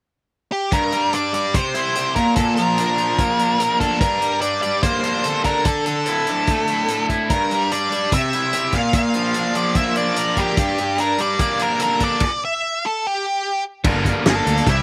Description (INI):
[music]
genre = indie rock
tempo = 146 BPM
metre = 4/4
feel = straight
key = G dorian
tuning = A4 = 442 Hz
[part]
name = octave-fuzz lead guitar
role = melody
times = 0.5-14.8 s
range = G4 to F5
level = -23 LUFS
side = equal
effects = distortion
[part]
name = overdriven electric guitar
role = riff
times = 0.7-14.8 s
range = G2 to Bb4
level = -23 LUFS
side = equal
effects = slapback echo
[part]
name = loose indie drum kit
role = drums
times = 0.7-14.8 s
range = crash cymbal, hi-hat, kick drum, snare drum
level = -25 LUFS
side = equal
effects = none
[part]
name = modern bright fingered electric bass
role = bass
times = 13.8-14.8 s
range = G1 to D2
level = -24 LUFS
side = equal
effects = none
[sound]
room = little or no reverb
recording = recorded outdoors, with no room sound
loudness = -20 LUFS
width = mono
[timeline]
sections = 0.7-13.9 A section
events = stop 12.2-13.9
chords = 0.0 N.C.; 0.7 Gm; 1.5 C; 2.2 Bb; 4.0 Gmadd9; 5.7 Dsus2; 7.3 Gm; 8.1 C; 8.7 Bb; 10.6 Gmadd9; 12.2 N.C.; 13.9 Gmadd9